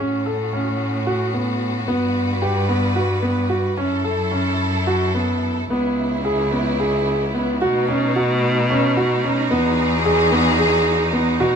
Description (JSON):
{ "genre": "contemporary instrumental, chamber music in an uneven meter", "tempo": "221 BPM (eighths)", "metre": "7/8", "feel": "straight", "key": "unclear", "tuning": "A4 = 440 Hz", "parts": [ { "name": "warm studio string section", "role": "sustained chords", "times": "0.0-11.6 s", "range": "C#3 to B4", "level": "-24 LUFS", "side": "equal", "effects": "none" }, { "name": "warm grand piano", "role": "arpeggios", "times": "0.0-11.6 s", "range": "B3 to A4", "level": "-20 LUFS", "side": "right 1 dB", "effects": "none" }, { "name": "rich cello", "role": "bass", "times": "0.0-11.6 s", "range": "C#2 to B2", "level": "-22 LUFS", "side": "left 1 dB", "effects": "none" } ], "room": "little or no reverb", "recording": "close, detailed microphones", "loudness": "-17 LUFS", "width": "side -7 dB against mid", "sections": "0.0-5.7 A section; 5.7-11.6 B section", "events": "none", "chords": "0.0 A6; 1.9 Gmaj7; 3.8 F#m7; 5.7 C#m7; 7.6 B9; 9.5 Emaj9", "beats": "| 0.00 0.27 0.54 0.81 1.08 1.35 1.61 | 1.89 2.15 2.42 2.69 2.97 3.24 3.51 | 3.78 4.05 4.33 4.60 4.88 5.16 5.43 | 5.71 5.99 6.26 6.53 6.81 7.08 7.35 | 7.62 7.90 8.17 8.44 8.71 8.98 9.25 | 9.52 9.79 10.06 10.33 10.60 10.87 11.14 | 11.41" }